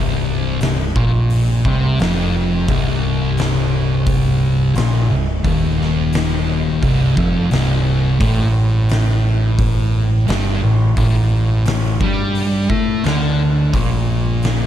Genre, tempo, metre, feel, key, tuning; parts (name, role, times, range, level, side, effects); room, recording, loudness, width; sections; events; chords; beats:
stoner and doom metal; 87 BPM; 4/4; straight; C dorian; A4 = 440 Hz
thick fuzz guitar; riff; 0.0-14.7 s; C2 to A3; -17 LUFS; left 3 dB; distortion
thick fuzz guitar; riff; 0.0-14.7 s; C2 to A3; -21 LUFS; right 8 dB; distortion
growling picked electric bass; bass; 0.0-14.7 s; C1 to A2; -22 LUFS; equal; overdrive
oversized low-tuned drum kit; drums; 0.6-14.6 s; hi-hat, kick drum, snare drum; -22 LUFS; equal
little or no reverb; dark, warm production; -14 LUFS; side -11 dB against mid
0.0-14.7 A section
0.0 Cm; 8.2 Gsus2; 13.7 N.C.
0.61 1.30 1.99 | 2.69 3.38 4.07 4.76 | 5.45 6.14 6.83 7.52 | 8.21 8.90 9.59 10.28 | 10.97 11.66 12.35 13.04 | 13.73 14.42